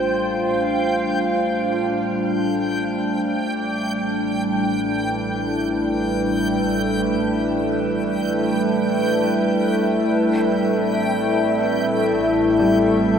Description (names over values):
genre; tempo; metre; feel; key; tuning
ambient; free time; none; none; unclear; A4 = 439 Hz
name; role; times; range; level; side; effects
warbly tape-like pad; sustained chords; 0.0-13.2 s; G3 to F5; -20 LUFS; equal; chorus, built-in reverb, shimmer reverb
rich studio double bass section; bass; 0.0-13.2 s; A1; -36 LUFS; equal; none
analog drone; drone; 0.0-13.2 s; A3; -25 LUFS; equal; chorus
backwards swelling texture; texture; 0.0-13.2 s; G5; -28 LUFS; equal; built-in reverb, shimmer reverb
felt-muted upright piano; arpeggios; 12.6-13.2 s; G3; -28 LUFS; right 1 dB; shimmer reverb
room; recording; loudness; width
wet huge ambient reverb, RT60 9.2 s; none; -18 LUFS; side -7 dB against mid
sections
0.0-13.2 A section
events
fade-in on double bass section 0.0-13.2; fade-out on synth texture 0.0-13.2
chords
0.0 G7sus4/A; 3.5 Em7/A; 10.1 Am7